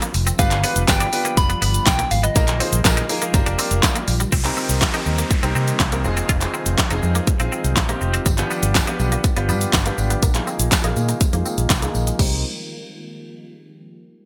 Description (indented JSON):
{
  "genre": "dance-pop",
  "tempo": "122 BPM",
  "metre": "4/4",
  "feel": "straight",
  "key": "C minor",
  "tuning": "A4 = 440 Hz",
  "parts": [
    { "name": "glassy FM pad", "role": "sustained chords", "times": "0.0-12.4 s", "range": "C3 to F4", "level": "-35 LUFS", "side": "equal", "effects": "none" },
    { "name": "twangy electric guitar", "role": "riff", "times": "0.0-12.3 s", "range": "G3 to F4", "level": "-31 LUFS", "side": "equal", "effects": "ensemble chorus, low-pass filter" },
    { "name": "pop drum kit", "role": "drums", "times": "0.0-12.3 s", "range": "crash cymbal, handclaps, hi-hat, kick drum, shaker, snare drum", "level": "-22 LUFS", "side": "equal", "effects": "none" },
    { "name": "vintage muted fingered electric bass", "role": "bass", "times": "0.1-12.4 s", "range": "F1 to C3", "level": "-24 LUFS", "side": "equal", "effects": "sidechain pumping" },
    { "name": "tambourine", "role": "percussion", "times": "0.1-4.3, 8.3-12.4 s", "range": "none", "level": "-35 LUFS", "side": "equal", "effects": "none" },
    { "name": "soft struck synth lead", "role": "melody", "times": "0.4-3.2 s", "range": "Eb5 to B5", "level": "-26 LUFS", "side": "equal", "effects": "chorus, delay" },
    { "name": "clear concert grand piano", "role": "accompaniment", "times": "0.4-12.4 s", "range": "Bb3 to C5", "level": "-28 LUFS", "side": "equal", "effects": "analog chorus, sidechain pumping, low-pass filter" },
    { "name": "downlifter", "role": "sound effects", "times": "4.3-8.3 s", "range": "none", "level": "-33 LUFS", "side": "equal", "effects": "none" }
  ],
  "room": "light reverb",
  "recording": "bright 1980s-style digital production",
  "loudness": "-19 LUFS",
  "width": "mono",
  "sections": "0.0-4.3 A section; 4.3-12.2 B section; 12.2-14.2 C section",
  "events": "filter sweep 4.3-12.2",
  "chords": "0.4 G7; 2.4 Bb7sus4; 3.3 Gm7; 4.3 Cm7; 6.0 Fm7; 8.3 G7; 10.2 Bb7sus4; 12.2 Cm7",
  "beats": "| 0.39 0.88 1.37 1.86 | 2.36 2.85 3.34 3.83 | 4.32 4.82 5.31 5.80 | 6.29 6.78 7.28 7.77 | 8.26 8.75 9.24 9.73 | 10.23 10.72 11.21 11.70 | 12.19"
}